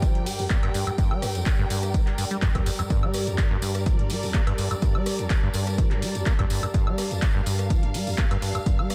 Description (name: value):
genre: acid house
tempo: 125 BPM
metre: 4/4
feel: swing 53% on 16ths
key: G minor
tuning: A4 = 438 Hz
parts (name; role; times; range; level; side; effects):
- warm studio string section; sustained chords; 0.0-8.9 s; G2 to G5; -35 LUFS; equal; sidechain pumping
- deep acid bass; riff; 0.0-8.9 s; F2 to Bb3; -30 LUFS; equal; overdrive, vintage 12-bit sampler grit, sidechain pumping, analog delay
- booming analog drum machine; drums; 0.0-8.9 s; handclaps, hi-hat, rim click, woodblock; -35 LUFS; equal; none
- electronic kick drum; drums; 0.0-8.8 s; none; -25 LUFS; equal; none
- tambourine; percussion; 0.0-8.9 s; none; -41 LUFS; equal; none
- deep dark ambient pad; texture; 0.0-8.9 s; G4 to Bb5; -39 LUFS; equal; chorus, built-in reverb, sidechain pumping
room: light reverb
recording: dense, heavily limited modern master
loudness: -24 LUFS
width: mono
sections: 0.0-8.9 A section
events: none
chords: 0.0 Gm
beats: 0.02 0.50 | 0.98 1.46 1.94 2.42 | 2.90 3.38 3.86 4.34 | 4.82 5.30 5.78 6.26 | 6.74 7.22 7.70 8.18 | 8.66